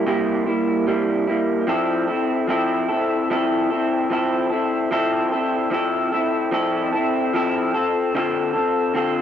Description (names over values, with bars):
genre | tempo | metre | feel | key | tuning
indie pop | 74 BPM | 4/4 | swing 55% on 16ths | F major | A4 = 439 Hz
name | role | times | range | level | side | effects
electric guitar through a small old amp | solo | 0.0-9.2 s | C3 to A4 | -19 LUFS | equal | lush chorus, vibrato effect, cassette tape
room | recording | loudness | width
moderate spring reverb, RT60 2.8 s | home recording on cassette | -19 LUFS | side -9 dB against mid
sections
0.0-9.2 A section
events
none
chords
0.0 C7; 1.7 Fmaj7; 7.7 Dm7